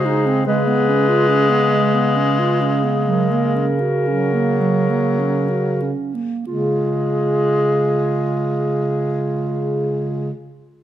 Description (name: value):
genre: classical, lyrical piece for single-reed quartet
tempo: 45-75 BPM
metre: 3/4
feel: rubato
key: Db major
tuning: A4 = 442 Hz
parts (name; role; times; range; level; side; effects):
- clear clarinet; melody; 0.0-10.3 s; Ab4 to C5; -25 LUFS; left 5 dB; none
- mellow clarinet; second line; 0.0-10.3 s; Gb3 to Gb4; -22 LUFS; right 5 dB; none
- clear tenor saxophone; accompaniment; 0.0-10.3 s; Gb3 to Ab3; -21 LUFS; left 2 dB; none
- warm bass clarinet; bass; 0.0-10.3 s; Db3; -21 LUFS; right 1 dB; none
room: moderate recital hall reverb, RT60 1.4 s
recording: dark, warm production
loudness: -16 LUFS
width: side -11 dB against mid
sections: 0.0-6.5 A section; 6.5-10.4 B section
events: slowing down 0.0-6.5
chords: 0.5 Db7(no3); 3.1 Gb/Db; 6.5 Db